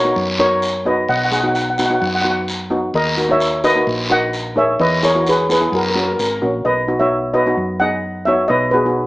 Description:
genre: calypso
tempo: 130 BPM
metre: 4/4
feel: swing 53% on 16ths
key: B major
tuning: A4 = 441 Hz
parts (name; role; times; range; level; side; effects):
- steel pan; melody; 0.0-9.1 s; F#4 to F#5; -16 LUFS; equal; plate reverb
- steel pan; accompaniment; 0.0-9.1 s; A#3 to G#4; -21 LUFS; equal; none
- hollow-body short-scale fingered electric bass; bass; 0.0-9.1 s; G#1 to F#2; -25 LUFS; equal; none
- guiro; percussion; 0.2-6.3 s; none; -25 LUFS; left 1 dB; none
room: moderate studio ambience, RT60 0.5 s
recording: small speaker sound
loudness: -14 LUFS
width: side -19 dB against mid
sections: 0.0-6.6 A section; 6.6-9.1 A section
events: none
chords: 0.0 B; 2.9 D#m7; 4.8 E; 5.7 F#; 6.6 B

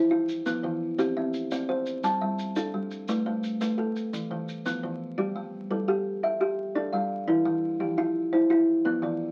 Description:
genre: southern african traditional, mbira-style interlocking cycle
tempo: 114 BPM (dotted quarters)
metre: 12/8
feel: straight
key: G mixolydian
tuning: A4 = 440 Hz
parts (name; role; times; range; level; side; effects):
- kalimba; arpeggios; 0.0-9.3 s; E3 to F5; -29 LUFS; equal; none
- kalimba; arpeggios; 0.0-9.3 s; E3 to A5; -32 LUFS; equal; none
- maracas; percussion; 0.3-4.8 s; none; -45 LUFS; equal; none
room: moderate small room reverb, RT60 0.5 s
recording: very old 78 rpm record, vinyl crackle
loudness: -28 LUFS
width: mono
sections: 0.0-5.2 A section; 5.2-9.3 B section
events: none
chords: 0.0 E5; 1.0 C; 2.0 G5; 3.1 Am; 4.1 E5; 5.2 G; 7.3 Em

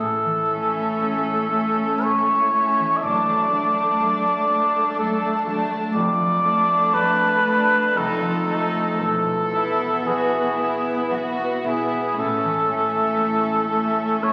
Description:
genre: classical, slow romantic movement for symphony orchestra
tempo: 56-63 BPM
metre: 3/4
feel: rubato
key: A major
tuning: A4 = 440 Hz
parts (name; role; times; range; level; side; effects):
- warm cor anglais; second line; 0.0-14.3 s; G#4 to E5; -23 LUFS; equal; none
- concert harp; arpeggios; 0.0-14.3 s; E2 to E5; -33 LUFS; equal; none
- dark chamber double bass section; bass; 0.0-13.1 s; E1 to A1; -43 LUFS; equal; none
- warm studio cello section; bass; 0.0-14.3 s; E2 to A2; -38 LUFS; equal; none
- warm chamber violin section; melody; 0.5-14.3 s; E5 to A5; -35 LUFS; equal; none
- warm studio violin section; second line; 0.5-14.3 s; C#4 to F#4; -31 LUFS; equal; none
- dark studio viola section; accompaniment; 0.5-14.3 s; A3 to B3; -29 LUFS; equal; none
room: wet scoring stage reverb, RT60 1.8 s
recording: very old 78 rpm record, vinyl crackle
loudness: -21 LUFS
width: mono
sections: 0.0-14.3 A section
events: none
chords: 0.0 A; 3.0 D/F#; 6.0 Dm/F; 8.0 F7; 9.0 E; 12.2 A

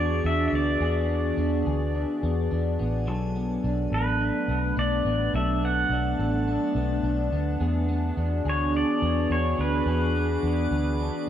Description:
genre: dream pop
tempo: 106 BPM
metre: 4/4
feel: straight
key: unclear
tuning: A4 = 440 Hz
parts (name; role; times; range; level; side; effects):
- pedal steel guitar; melody; 0.0-11.3 s; B4 to F#5; -30 LUFS; equal; lush chorus, tape echo
- warbly tape-like pad; sustained chords; 0.0-11.3 s; E3 to G#4; -29 LUFS; right 1 dB; chorus, built-in reverb, phaser
- electric guitar at the edge of break-up; arpeggios; 0.0-11.3 s; F#3 to A4; -31 LUFS; left 4 dB; analog chorus, tape echo
- vintage muted fingered electric bass; bass; 0.0-11.1 s; A1 to E2; -27 LUFS; equal; none
- drifting glass-harmonics texture; texture; 0.0-11.3 s; A5 to D6; -47 LUFS; left 1 dB; chorus, built-in reverb, tape echo
room: wet plate reverb, RT60 2.4 s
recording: dreamy mix soaked in reverb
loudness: -23 LUFS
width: side -10 dB against mid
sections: 0.0-11.3 A section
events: none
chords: 0.0 E7; 3.1 Bm7; 7.6 E7

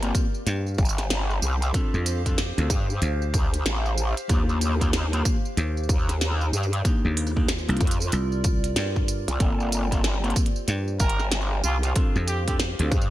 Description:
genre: glitch hop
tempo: 94 BPM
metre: 4/4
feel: swing 62% on 16ths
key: G minor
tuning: A4 = 440 Hz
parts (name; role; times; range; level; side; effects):
- mellow electric guitar; stabs; 0.0-12.9 s; Bb3 to A4; -31 LUFS; left 1 dB; vintage 12-bit sampler grit, sidechain pumping, ping-pong delay
- growl bass; bass; 0.0-13.1 s; G1 to G2; -25 LUFS; equal; chorus, tube saturation
- glitchy drum kit; drums; 0.0-13.1 s; hi-hat, rim click, snare drum, tambourine; -30 LUFS; right 1 dB; gated reverb
- warbly tape-like pad; texture; 0.0-13.1 s; F4 to F5; -35 LUFS; right 2 dB; chorus, built-in reverb, phaser, sidechain pumping
- electronic kick drum; drums; 0.1-13.1 s; none; -24 LUFS; equal; none
- dry thumbed slap bass; bass; 0.5-12.9 s; C2 to G2; -25 LUFS; equal; none
- clear trumpet; melody; 11.0-12.6 s; F4 to Bb4; -31 LUFS; right 2 dB; ping-pong delay
room: little or no reverb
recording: bright 1980s-style digital production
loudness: -22 LUFS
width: side -15 dB against mid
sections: 0.0-13.1 A section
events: none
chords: 0.0 Gm11; 1.7 Dm7; 4.3 Ebmaj9; 6.8 Cm9; 9.4 Gm11; 12.0 Dm7

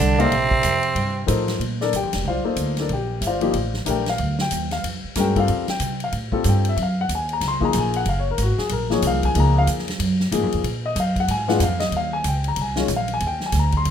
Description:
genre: modal jazz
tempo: 186 BPM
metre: 4/4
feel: swing 62% on 8ths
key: Bb major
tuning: A4 = 442 Hz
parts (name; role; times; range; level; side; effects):
- growling tenor saxophone; melody; 0.0-1.3 s; C4 to D4; -20 LUFS; right 1 dB; none
- breathy bass clarinet; second line; 0.0-1.3 s; C3 to D3; -25 LUFS; right 9 dB; none
- upright bass; bass; 0.0-13.9 s; F1 to C3; -23 LUFS; right 1 dB; none
- warm baby grand piano; accompaniment; 0.2-13.9 s; Eb3 to C6; -23 LUFS; left 4 dB; none
- swinging big-band drum kit; drums; 0.2-13.9 s; hi-hat, kick drum, ride cymbal, snare drum; -28 LUFS; right 1 dB; none
room: light reverb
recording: minimal, uncompressed stereo recording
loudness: -19 LUFS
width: side -8 dB against mid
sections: 0.0-1.6 A section; 1.6-11.9 B section; 11.9-13.9 B section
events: none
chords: 0.0 F9sus4; 1.6 Bbmaj9; 6.8 Gbmaj9; 10.6 Bb7(no3); 11.9 Eb9sus4

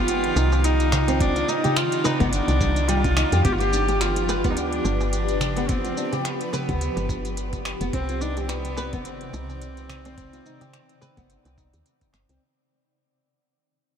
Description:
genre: organic downtempo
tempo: 107 BPM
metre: 4/4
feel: swing 56% on 16ths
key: C harmonic minor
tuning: A4 = 442 Hz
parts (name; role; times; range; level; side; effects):
- warm cello; melody; 0.0-11.8 s; B3 to G4; -26 LUFS; equal; vintage 12-bit sampler grit, tape echo
- granular cloud pad; sustained chords; 0.0-12.4 s; C3 to D5; -31 LUFS; left 1 dB; built-in reverb, wide subtle chorus, sidechain pumping
- flamenco guitar; arpeggios; 0.0-12.4 s; G3 to B4; -29 LUFS; left 1 dB; analog chorus, diffuse ambient delay
- woody FM bass; bass; 0.0-12.4 s; F1 to F2; -25 LUFS; equal; sidechain pumping
- bronze singing bowl; texture; 0.0-12.4 s; none; barely audible; none; none
- organic electronic drum kit; drums; 0.1-12.4 s; finger snaps, hi-hat, shaker; -32 LUFS; right 1 dB; none
- darbuka; percussion; 0.4-12.4 s; none; -32 LUFS; right 2 dB; none
- electronic kick drum; drums; 1.2-12.1 s; none; -26 LUFS; equal; overdrive
room: wet huge ambient reverb, RT60 8.3 s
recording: dreamy mix soaked in reverb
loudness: -20 LUFS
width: side -8 dB against mid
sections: 0.0-12.4 A section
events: fade-out 3.4-12.4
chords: 0.0 Cmadd9; 3.4 G7; 7.9 Cmadd9

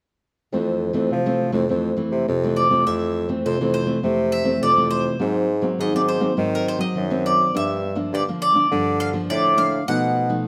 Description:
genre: samba and choro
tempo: 103 BPM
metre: 4/4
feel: straight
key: F major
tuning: A4 = 440 Hz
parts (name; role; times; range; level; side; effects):
- nylon-string guitar; accompaniment; 0.5-10.5 s; F2 to D#4; -25 LUFS; equal; none
- clear bassoon; bass; 0.5-10.4 s; F2 to F3; -26 LUFS; equal; none
- mandolin; melody; 2.6-10.4 s; Bb4 to F#5; -24 LUFS; equal; none
room: wet studio reverb, RT60 0.8 s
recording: none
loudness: -21 LUFS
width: mono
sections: 0.5-2.9 A section; 2.9-10.5 B section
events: none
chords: 0.5 Fmaj7; 5.2 Ab9; 7.5 Gm7; 9.9 B7#11

